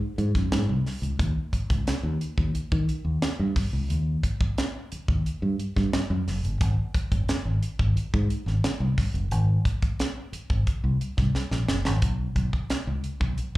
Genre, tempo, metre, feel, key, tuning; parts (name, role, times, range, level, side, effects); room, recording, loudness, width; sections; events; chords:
funk; 89 BPM; 4/4; straight; A4 = 439 Hz
fingered electric bass; bass; 0.2-13.6 s; F#1 to Eb3; -25 LUFS; equal
tight funk drum kit; drums; 0.2-13.6 s; hi-hat, kick drum, snare drum; -27 LUFS; equal
light reverb; live gig heard through the venue's PA, club reverb; -24 LUFS; side -18 dB against mid
0.0-12.0 A section; 12.0-13.6 B section
drum fill 11.3-12.0